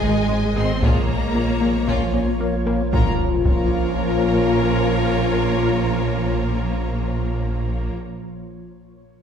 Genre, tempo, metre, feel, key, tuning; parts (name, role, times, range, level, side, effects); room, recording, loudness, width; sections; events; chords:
cinematic, hybrid orchestral and electronic film score; 114 BPM; 4/4; straight; Bb minor; A4 = 441 Hz
warm studio violin section; melody; 0.0-7.9 s; Ab5 to C6; -33 LUFS; left 3 dB
rich symphonic violin section; second line; 0.0-7.9 s; Bb3 to Eb5; -31 LUFS; left 2 dB
rich symphonic viola section; accompaniment; 0.0-7.9 s; Ab3 to Bb4; -28 LUFS; right 1 dB
ethereal airy pad; sustained chords; 0.0-7.6 s; Eb3 to Eb5; -25 LUFS; left 1 dB; ensemble chorus, built-in reverb, phaser
fat analog bass; riff; 0.0-2.8 s; Ab2 to Bb3; -25 LUFS; left 2 dB
clear symphonic double bass section; bass; 0.0-7.9 s; Ab1 to Bb1; -26 LUFS; right 4 dB
punchy sub bass; bass; 0.0-7.9 s; Ab1 to Bb1; -27 LUFS; equal
warm symphonic cello section; bass; 0.0-7.9 s; Ab3 to C4; -29 LUFS; right 1 dB
warm French horn section; sustained chords; 0.8-7.6 s; F3 to Db4; -27 LUFS; left 3 dB
taiko ensemble; drums; 0.8-3.9 s; -24 LUFS; equal
impact; sound effects; 2.9-5.0 s; -26 LUFS; equal
wet scoring stage reverb, RT60 1.7 s; heard from further back in the room; -18 LUFS; side -8 dB against mid
0.0-2.9 A section; 2.9-7.1 B section
impact 2.9-5.0
0.0 Ab; 0.8 Bbm